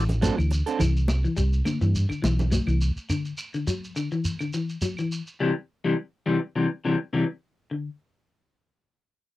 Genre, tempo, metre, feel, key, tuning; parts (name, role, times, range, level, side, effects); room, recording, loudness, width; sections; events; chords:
afrobeat; 104 BPM; 4/4; swing 54% on 16ths; A4 = 440 Hz
semi-hollow electric guitar; arpeggios; 0.0-7.9 s; C3 to G3; -26 LUFS; left 3 dB
hollow-body short-scale fingered electric bass; bass; 0.0-3.0 s; A1 to G2; -23 LUFS; equal
hi-hat; drums; 0.1-0.8 s; -40 LUFS; right 3 dB
congas; percussion; 0.1-2.7 s; -30 LUFS; equal
shekere; percussion; 0.1-5.4 s; -33 LUFS; right 1 dB
electric guitar at the edge of break-up; stabs; 0.2-0.8 s; F#3 to A4; -26 LUFS; right 6 dB
claves; percussion; 0.4-5.1 s; -41 LUFS; right 3 dB
little or no reverb; -23 LUFS; side -16 dB against mid
0.0-7.7 A section; 7.7-9.4 B section
band accent 5.4-7.7
0.0 D7; 0.8 Cmaj7; 3.1 D; 5.4 C; 7.7 N.C.